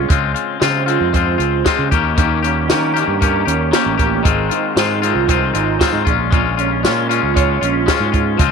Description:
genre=indie rock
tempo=116 BPM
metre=4/4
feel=straight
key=unclear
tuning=A4 = 442 Hz
part: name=electric guitar through a small old amp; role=riff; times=0.0-8.5 s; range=Bb2 to Db5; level=-20 LUFS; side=right 15 dB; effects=analog chorus
part: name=twangy electric guitar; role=riff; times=0.0-8.5 s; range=Eb3 to G4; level=-17 LUFS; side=left 13 dB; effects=none
part: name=growling fingered electric bass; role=bass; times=0.0-8.5 s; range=Ab1 to Eb3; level=-20 LUFS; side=right 1 dB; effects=overdrive
part: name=compact cocktail drum kit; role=drums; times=0.1-8.5 s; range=hi-hat, kick drum, snare drum, tambourine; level=-18 LUFS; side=right 1 dB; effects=none
room=light reverb, small room ambience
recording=1960s-style stereo with parts hard left and right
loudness=-13 LUFS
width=side -5 dB against mid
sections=0.0-8.5 A section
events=none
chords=0.1 Dbmaj7; 1.9 Eb7; 4.3 Ab6; 6.1 Bbm7

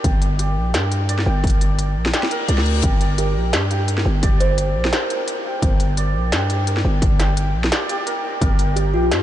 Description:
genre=half-time drum and bass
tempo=172 BPM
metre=4/4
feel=swing 55% on 16ths, half-time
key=G minor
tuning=A4 = 440 Hz
part: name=santur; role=arpeggios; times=0.0-9.2 s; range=G4 to G5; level=-26 LUFS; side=right 1 dB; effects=ping-pong delay
part: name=growling 808-style bass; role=bass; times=0.0-9.2 s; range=G1 to G2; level=-19 LUFS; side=equal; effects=none
part: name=electronic kick drum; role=drums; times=0.0-8.5 s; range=none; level=-19 LUFS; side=equal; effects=small room ambience
part: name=industrial drum kit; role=drums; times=0.0-9.2 s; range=hi-hat, snare drum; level=-24 LUFS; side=equal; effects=small room ambience
part: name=reverse cymbal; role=sound effects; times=2.3-2.8 s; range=none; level=-33 LUFS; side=left 5 dB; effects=none
part: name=kalimba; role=melody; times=3.2-4.5, 8.8-9.1 s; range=F4 to C5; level=-26 LUFS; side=right 1 dB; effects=ping-pong delay
room=light reverb, digital ambience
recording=nothing above 10.3 kHz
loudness=-17 LUFS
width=side -12 dB against mid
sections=0.0-9.2 A section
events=reverse cymbal 2.3-2.8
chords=0.0 G5

